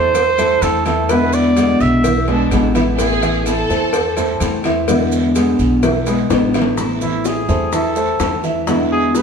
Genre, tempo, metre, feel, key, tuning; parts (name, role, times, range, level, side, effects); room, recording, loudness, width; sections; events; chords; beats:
latin, Cuban son and guajira; 127 BPM; 4/4; straight; A harmonic minor; A4 = 439 Hz
warm trumpet; melody; 0.0-2.3, 7.0-9.2 s; E4 to E5; -18 LUFS; right 2 dB
nylon-string guitar; accompaniment; 0.0-9.2 s; B2 to E4; -18 LUFS; left 1 dB
warm grand piano; arpeggios; 0.0-9.2 s; E3 to E5; -20 LUFS; right 2 dB
upright bass; bass; 0.0-9.2 s; A1 to E2; -23 LUFS; equal
cowbell and bongos; percussion; 0.1-9.2 s; -23 LUFS; left 3 dB
guiro; percussion; 0.1-9.2 s; -34 LUFS; right 5 dB
maracas; percussion; 0.1-9.2 s; -34 LUFS; right 5 dB
warm studio violin section; second line; 2.3-4.4 s; D4 to A4; -22 LUFS; right 1 dB
wet stone room reverb, RT60 1.4 s; band playing live in one room; -13 LUFS; side -6 dB against mid
0.0-6.8 A section; 6.8-9.2 B section
drum fill 5.8-6.8; trumpet solo 6.8-9.2
0.0 Am; 1.1 E7; 3.0 Am; 4.9 E7; 6.8 Am; 8.7 E7
0.14 0.62 | 1.09 1.56 2.04 2.51 | 2.98 3.46 3.93 4.41 | 4.88 5.36 5.83 6.30 | 6.78 7.25 7.73 8.20 | 8.68 9.15